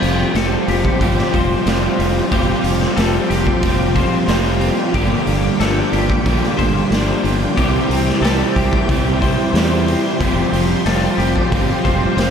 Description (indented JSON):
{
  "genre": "rock, shoegaze and dream pop",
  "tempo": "91 BPM",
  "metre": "4/4",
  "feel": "straight",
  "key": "unclear",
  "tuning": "A4 = 443 Hz",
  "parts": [
    { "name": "string machine, violins", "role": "sustained chords", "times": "0.0-12.3 s", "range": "Bb3 to G5", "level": "-25 LUFS", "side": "equal", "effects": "ensemble chorus" },
    { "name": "clean electric guitar", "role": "arpeggios", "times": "0.0-12.3 s", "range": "G4 to C5", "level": "-26 LUFS", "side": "left 6 dB", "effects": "ensemble chorus, tape echo" },
    { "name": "electric guitar at the edge of break-up", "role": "riff", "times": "0.0-12.3 s", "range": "G2 to G4", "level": "-20 LUFS", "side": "right 8 dB", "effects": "reverse reverb" },
    { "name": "overdriven semi-hollow guitar", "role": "riff", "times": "0.0-12.3 s", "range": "G2 to F4", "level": "-21 LUFS", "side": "left 8 dB", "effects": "wide subtle chorus" },
    { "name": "modern bright fingered electric bass", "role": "bass", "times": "0.0-12.3 s", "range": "F1 to E2", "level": "-20 LUFS", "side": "equal", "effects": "none" },
    { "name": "raw garage drum kit", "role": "drums", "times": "0.0-12.3 s", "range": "hi-hat, kick drum, snare drum", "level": "-20 LUFS", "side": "equal", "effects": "none" }
  ],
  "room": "wet church reverb, RT60 3.3 s",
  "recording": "dreamy mix soaked in reverb",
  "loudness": "-14 LUFS",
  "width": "side -7 dB against mid",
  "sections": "0.0-12.3 A section",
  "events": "none",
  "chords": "0.0 Fsus2; 4.9 Gm7; 7.6 C; 10.2 Fsus2",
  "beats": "0.35 1.01 1.66 | 2.32 2.97 3.63 4.29 | 4.94 5.60 6.25 6.91 | 7.57 8.23 8.88 9.54 | 10.20 10.86 11.52 12.18"
}